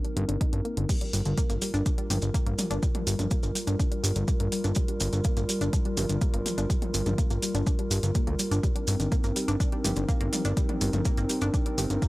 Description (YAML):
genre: melodic techno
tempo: 124 BPM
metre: 4/4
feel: straight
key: G minor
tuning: A4 = 440 Hz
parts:
  - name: dark analog pad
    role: sustained chords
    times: 0.0-12.1 s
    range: G3 to Bb4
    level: -33 LUFS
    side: equal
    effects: chorus, vintage 12-bit sampler grit, sidechain pumping
  - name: tight sequenced synth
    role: arpeggios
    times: 0.0-12.1 s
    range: D3 to G4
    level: -34 LUFS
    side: left 1 dB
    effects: chorus, sidechain pumping, analog delay
  - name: punchy analog drum machine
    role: drums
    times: 0.0-12.1 s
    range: crash cymbal, hi-hat, toms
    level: -35 LUFS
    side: left 1 dB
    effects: none
  - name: fat analog bass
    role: bass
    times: 0.2-12.0 s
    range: G1 to D2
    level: -28 LUFS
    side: equal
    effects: tube saturation, sidechain pumping
  - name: electronic kick drum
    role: drums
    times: 0.4-12.1 s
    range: none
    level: -27 LUFS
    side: equal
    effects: none
  - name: maracas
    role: percussion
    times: 0.9-12.1 s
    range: none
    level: -35 LUFS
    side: right 1 dB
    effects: none
room: little or no reverb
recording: dry, gritty hardware recording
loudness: -24 LUFS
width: side -19 dB against mid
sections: 0.0-12.1 A section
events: filter sweep on synth arpeggio sound 0.0-12.1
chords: 0.0 Cm7/G; 0.9 Gm7; 8.6 Cm7/G